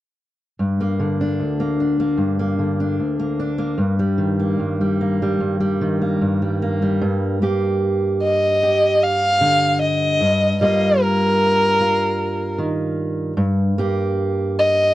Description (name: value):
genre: acoustic folk-pop ballad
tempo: 75 BPM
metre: 4/4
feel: straight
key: G minor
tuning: A4 = 440 Hz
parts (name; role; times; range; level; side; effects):
- fingerpicked steel-string acoustic guitar; accompaniment; 0.6-14.9 s; D2 to G4; -19 LUFS; equal; none
- dark violin; melody; 8.2-14.9 s; Bb4 to F5; -16 LUFS; equal; none
room: little or no reverb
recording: dry, close 1970s-style studio recording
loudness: -17 LUFS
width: side -15 dB against mid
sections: 0.6-7.0 A section; 7.0-14.9 B section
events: none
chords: 0.6 Gm; 3.8 Eb/G; 7.0 Gm; 10.2 Ebadd9/G; 13.4 Gm